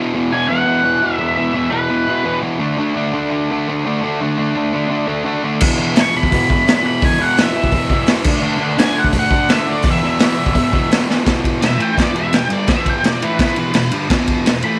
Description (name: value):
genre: garage rock duo or trio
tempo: 170 BPM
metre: 4/4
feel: straight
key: unclear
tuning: A4 = 442 Hz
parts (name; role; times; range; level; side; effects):
- fuzz guitar; riff; 0.0-14.8 s; E2 to E4; -20 LUFS; equal; distortion
- octave-fuzz lead guitar; melody; 0.3-2.4, 6.0-14.8 s; B4 to C#6; -21 LUFS; equal; distortion, tape echo
- raw garage drum kit; drums; 5.6-14.7 s; crash cymbal, hi-hat, kick drum, ride cymbal, snare drum; -18 LUFS; equal; none
room: light reverb, small room ambience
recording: none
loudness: -16 LUFS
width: mono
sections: 0.0-11.3 A section; 11.3-14.8 B section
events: drum fill 11.1; lead electric guitar solo 11.3-14.8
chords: 0.0 E5; 2.6 D5; 5.6 E5; 8.3 D; 9.8 E5